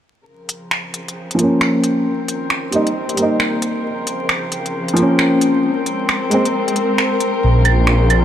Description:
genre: future garage.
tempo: 134 BPM.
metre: 4/4.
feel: swing 64% on 16ths.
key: Bb dorian.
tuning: A4 = 439 Hz.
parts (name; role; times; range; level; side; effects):
warm symphonic string section; sustained chords; 0.3-8.2 s; Db3 to Bb4; -24 LUFS; left 2 dB; none.
drifting glass-harmonics texture; texture; 1.0-8.2 s; C4 to C5; -24 LUFS; left 1 dB; chorus, built-in reverb.
organic electronic drum kit; drums; 0.5-8.2 s; claves, finger snaps, hi-hat; -21 LUFS; right 1 dB; overdrive.
warm upright piano; accompaniment; 1.3-6.4 s; F3 to Eb4; -17 LUFS; equal; low-pass filter, ping-pong delay.
swelling detuned saw bass; bass; 7.4-8.2 s; Bb1; -12 LUFS; equal; none.
room: moderate huge ambient reverb, RT60 4.5 s.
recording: vinyl crackle.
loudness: -14 LUFS.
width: side -10 dB against mid.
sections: 0.3-8.2 A section.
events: fade-in on string section 0.3-8.2; filter sweep on upright piano 0.3-8.2.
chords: 0.3 Bbm; 2.1 Cm7; 3.9 Bbm; 5.6 Abadd9; 7.4 Bbm.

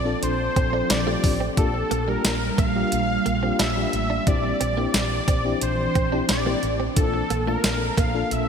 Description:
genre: 1980s-style pop.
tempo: 89 BPM.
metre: 4/4.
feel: straight.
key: unclear.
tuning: A4 = 440 Hz.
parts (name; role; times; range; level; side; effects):
wide unison lead; melody; 0.0-8.5 s; A4 to F5; -26 LUFS; equal; none.
FM electric piano with tremolo; accompaniment; 0.0-8.5 s; Bb3 to A5; -28 LUFS; left 6 dB; none.
ethereal airy pad; sustained chords; 0.0-8.5 s; E3 to F4; -29 LUFS; right 2 dB; ensemble chorus, built-in reverb.
woody fretless electric bass; bass; 0.0-8.5 s; A1 to Bb1; -28 LUFS; equal; none.
direct-recorded clean electric guitar; riff; 0.2-8.3 s; G3 to D4; -32 LUFS; right 7 dB; ensemble chorus.
clean 12-bit digital drum machine; drums; 0.2-8.5 s; hi-hat, kick drum, snare drum, tambourine; -24 LUFS; equal; gated reverb.
room: moderate lush hall reverb, RT60 2.7 s.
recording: bright 1980s-style digital production.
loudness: -20 LUFS.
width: side -7 dB against mid.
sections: 0.0-8.5 A section.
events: none.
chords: 0.0 Dm7; 4.3 Cadd9/Bb; 7.0 Bbmaj7.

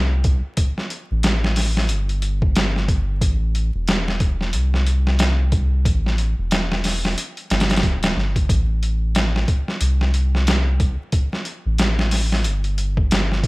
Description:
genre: trip hop.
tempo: 91 BPM.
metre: 4/4.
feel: swing 59% on 16ths.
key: A minor.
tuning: A4 = 440 Hz.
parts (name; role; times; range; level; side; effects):
soft dub sub bass; bass; 0.0-13.5 s; D1 to C2; -20 LUFS; equal; none.
trip hop sampler-style drum kit; drums; 0.2-13.5 s; hi-hat, kick drum, snare drum; -20 LUFS; equal; overdrive, studio reverb.
room: digital ambience.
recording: vinyl crackle.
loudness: -18 LUFS.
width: side -23 dB against mid.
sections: 0.0-13.5 A section.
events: none.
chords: none.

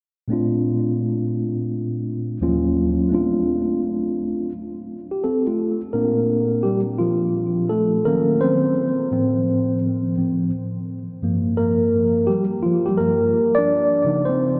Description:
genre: hip hop.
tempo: 85 BPM.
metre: 4/4.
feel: swing 65% on 16ths.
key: Bb major.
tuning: A4 = 435 Hz.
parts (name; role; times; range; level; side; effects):
mellow tine electric piano; solo; 0.3-14.6 s; Eb2 to D5; -21 LUFS; equal; delay.
room: wet cathedral reverb, RT60 5.0 s.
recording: dreamy mix soaked in reverb.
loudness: -21 LUFS.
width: mono.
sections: 0.3-5.9 A section; 5.9-14.6 B section.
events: tine electric piano solo 5.9-14.6.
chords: 0.3 Bbmaj9; 2.4 Ebm7; 3.1 Dm7/A; 5.6 N.C.; 5.9 Bbmaj9; 8.1 Ebm7; 8.8 F/A; 11.2 Gm7; 14.1 Dbmaj9.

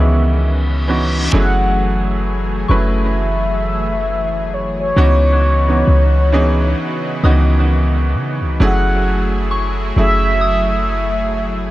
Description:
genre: contemporary R&B.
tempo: 66 BPM.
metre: 4/4.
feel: swing 58% on 16ths.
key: F# dorian.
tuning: A4 = 440 Hz.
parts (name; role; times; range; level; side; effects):
mellow horn-like synth lead; melody; 0.0-11.7 s; C#5 to F#5; -20 LUFS; equal; chorus, dub echo.
clear grand piano; accompaniment; 0.0-11.7 s; D#3 to B4; -20 LUFS; right 2 dB; dub echo.
lush unison pad; sustained chords; 0.0-11.7 s; C#3 to G#4; -24 LUFS; left 1 dB; chorus.
clean 808-style bass; bass; 0.0-11.7 s; F#1 to C#3; -16 LUFS; equal; none.
reverse cymbal; sound effects; 0.4-1.3 s; none; -26 LUFS; left 1 dB; none.
soft synth bell; texture; 1.3-11.7 s; G#5 to D#6; -28 LUFS; left 2 dB; chorus, phaser, dub echo.
room: light reverb.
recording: echo-heavy mix.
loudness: -13 LUFS.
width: side -16 dB against mid.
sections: 0.0-1.3 A section; 1.3-11.7 B section.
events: reverse cymbal 0.4-1.3.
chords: 0.0 C#m11; 1.3 F#m9; 5.0 C#m11; 8.6 F#m9.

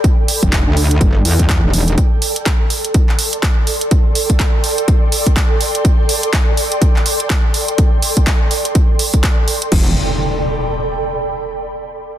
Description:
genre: bass house.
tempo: 124 BPM.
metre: 4/4.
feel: swing 59% on 16ths.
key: E minor.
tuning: A4 = 444 Hz.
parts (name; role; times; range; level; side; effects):
electronic kick drum; drums; 0.0-9.8 s; none; -13 LUFS; equal; overdrive.
house drum kit; drums; 0.0-9.8 s; crash cymbal, handclaps, hi-hat; -19 LUFS; right 1 dB; overdrive.
ethereal airy pad; texture; 0.0-11.6 s; A4 to C6; -21 LUFS; right 1 dB; ensemble chorus, built-in reverb, sidechain pumping.
metallic wobble bass; bass; 0.4-2.0, 9.7-9.9 s; E1 to E2; -14 LUFS; equal; distortion, chorus, sidechain pumping.
impact; sound effects; 9.7-11.7 s; none; -22 LUFS; equal; none.
room: little or no reverb.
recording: dense, heavily limited modern master.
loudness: -12 LUFS.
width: side -12 dB against mid.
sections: 0.0-9.7 A section; 9.7-11.7 B section.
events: none.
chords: 0.0 Em; 2.0 Am; 9.7 Em (rootless).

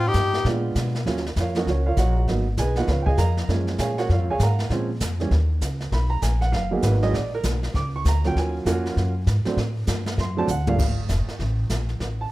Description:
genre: jazz, small-group swing and bop.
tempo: 197 BPM.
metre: 4/4.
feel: swing 62% on 8ths.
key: Eb minor.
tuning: A4 = 436 Hz.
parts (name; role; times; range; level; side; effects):
bright tenor saxophone; melody; 0.0-0.5 s; G4; -24 LUFS; left 4 dB; none.
clear tenor saxophone; second line; 0.0-0.5 s; Eb4; -32 LUFS; right 2 dB; none.
upright bass; bass; 0.0-12.3 s; F1 to Cb3; -23 LUFS; equal; none.
jazz brush drum kit; drums; 0.1-12.3 s; brushed snare drum, crash cymbal, hi-hat, kick drum, snare drum, toms; -29 LUFS; equal; none.
warm upright piano; accompaniment; 0.5-12.3 s; G2 to D6; -25 LUFS; right 3 dB; none.
room: light reverb.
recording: none.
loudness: -20 LUFS.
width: side -17 dB against mid.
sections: 0.0-1.1 A section; 1.1-10.8 B section; 10.8-12.3 B section.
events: drum fill 10.5-10.8.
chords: 0.5 Bb7b9; 1.1 Ebm9; 2.3 Abm9; 2.9 Db13; 3.5 Gbmaj9; 4.7 Bbm7; 5.3 Dbsus2; 5.9 Abm9; 7.1 Bb; 8.4 Ebm9; 9.6 D7; 10.8 Gm7.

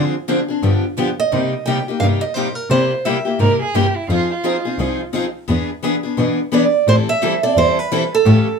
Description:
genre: acoustic string swing (jazz manouche).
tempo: 173 BPM.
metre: 4/4.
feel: swing 61% on 8ths.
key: unclear.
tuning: A4 = 440 Hz.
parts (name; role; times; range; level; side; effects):
picked steel-string acoustic guitar; accompaniment; 0.0-8.5 s; C3 to A4; -20 LUFS; left 6 dB; none.
picked steel-string acoustic guitar; accompaniment; 0.0-8.5 s; C3 to B4; -25 LUFS; right 4 dB; none.
muted cello; bass; 0.6-8.3 s; C2 to C3; -17 LUFS; left 1 dB; none.
picked acoustic archtop guitar; melody; 1.2-3.4, 6.5-8.6 s; A4 to G5; -17 LUFS; right 5 dB; none.
warm violin; second line; 3.4-5.0 s; E4 to Bb4; -21 LUFS; right 3 dB; none.
room: moderate club reverb, RT60 0.6 s.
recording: minimal, uncompressed stereo recording.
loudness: -15 LUFS.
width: side -6 dB against mid.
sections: 0.0-6.9 A section; 6.9-8.6 B section.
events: none.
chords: 0.0 Dm7b5; 0.6 G7; 1.3 Cm7; 2.7 C7; 4.1 Fm7; 5.5 E7; 6.9 Am7.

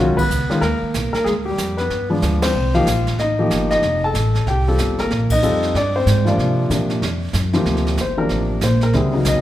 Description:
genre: jazz piano trio.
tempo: 188 BPM.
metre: 4/4.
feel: swing 62% on 8ths.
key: Bb major.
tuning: A4 = 436 Hz.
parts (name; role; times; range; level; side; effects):
warm grand piano; melody; 0.0-9.4 s; C3 to A5; -18 LUFS; left 1 dB; none.
upright bass; bass; 0.0-9.4 s; F1 to C3; -20 LUFS; right 1 dB; none.
jazz brush drum kit; drums; 0.2-9.4 s; brushed snare drum, hi-hat, kick drum, ride cymbal, snare drum; -27 LUFS; right 3 dB; none.
room: moderate recital hall reverb, RT60 1.5 s.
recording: recorded in a church or concert hall.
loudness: -16 LUFS.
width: side -13 dB against mid.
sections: 0.0-7.7 A section; 7.7-9.4 B section.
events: band accent 0.1, 2.4, 5.3; grand piano solo 7.7-9.4.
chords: 0.0 Bmaj9#11; 1.3 Dm; 1.9 G7b9; 2.5 Cm7; 3.8 F9; 5.1 Bb5; 5.7 G5; 6.4 Bbadd9; 7.0 F5; 7.7 Bbmaj7.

